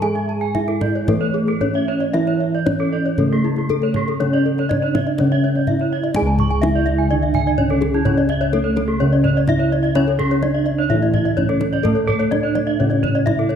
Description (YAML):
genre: Balinese gamelan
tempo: 113-127 BPM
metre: 4/4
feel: straight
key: C# pelog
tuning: A4 = 440 Hz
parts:
  - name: gamelan-type bronze metallophone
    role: melody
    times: 0.0-13.6 s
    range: A3 to G#4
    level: -22 LUFS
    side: right 2 dB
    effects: none
  - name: gamelan-type bronze metallophone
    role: accompaniment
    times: 0.0-13.6 s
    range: C#3 to A3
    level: -24 LUFS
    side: right 1 dB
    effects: none
  - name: gamelan-type bronze metallophone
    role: arpeggios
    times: 0.0-13.6 s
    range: E4 to A5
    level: -24 LUFS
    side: left 6 dB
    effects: none
  - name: gamelan-type bossed gongs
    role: bass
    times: 0.0-13.6 s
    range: C#2 to A4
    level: -22 LUFS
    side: left 1 dB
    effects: none
  - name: kendang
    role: percussion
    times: 0.0-13.6 s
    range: none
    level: -26 LUFS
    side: equal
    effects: none
  - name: gamelan-type bronze metallophone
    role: arpeggios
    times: 0.2-13.5 s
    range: E4 to C#6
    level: -26 LUFS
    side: right 6 dB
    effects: none
room: moderate scoring stage reverb, RT60 1.9 s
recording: dark, warm production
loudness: -16 LUFS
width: side -8 dB against mid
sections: 0.0-6.2 A section; 6.2-13.6 B section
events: none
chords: none